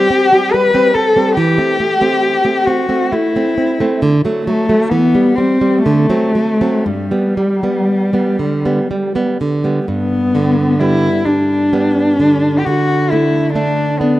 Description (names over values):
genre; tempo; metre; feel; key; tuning
romantic duo for cello and classical guitar; 58-72 BPM; 3/4; rubato; G major; A4 = 440 Hz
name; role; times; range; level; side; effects
warm cello; melody; 0.0-14.2 s; G3 to B4; -14 LUFS; left 2 dB; none
nylon-string guitar; accompaniment; 0.0-14.2 s; G2 to D4; -15 LUFS; right 2 dB; none
room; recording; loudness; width
moderate lush hall reverb, RT60 3.2 s; rough home demo mix; -12 LUFS; side -15 dB against mid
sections
0.0-9.9 A section; 9.9-14.2 B section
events
none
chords
0.0 C5; 1.4 Am7/E; 4.0 D; 4.9 C/E; 5.8 D7; 6.9 G; 12.7 D5